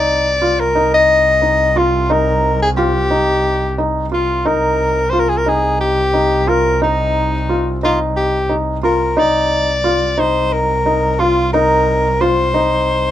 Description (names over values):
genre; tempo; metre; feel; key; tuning
contemporary instrumental, chamber music in an uneven meter; 178 BPM (eighths); 7/8; straight; C minor; A4 = 440 Hz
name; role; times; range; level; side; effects
breathy soprano saxophone; melody; 0.0-13.1 s; Eb4 to Eb5; -15 LUFS; left 1 dB; none
felt-muted upright piano; arpeggios; 0.0-13.1 s; Eb4 to F4; -18 LUFS; equal; none
dark double bass; bass; 0.0-13.1 s; C2; -20 LUFS; right 1 dB; none
room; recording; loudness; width
light reverb; minimal, uncompressed stereo recording; -13 LUFS; side -12 dB against mid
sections
0.0-13.1 A section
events
none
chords
0.0 Cm7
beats
0.08 0.42 0.75 1.09 1.43 1.77 | 2.10 2.44 2.78 3.12 3.45 3.79 4.13 | 4.46 4.80 5.14 5.47 5.81 6.15 6.48 | 6.82 7.16 7.50 7.83 8.17 8.51 8.84 | 9.18 9.52 9.85 10.19 10.53 10.86 11.20 | 11.54 11.87 12.21 12.55 12.89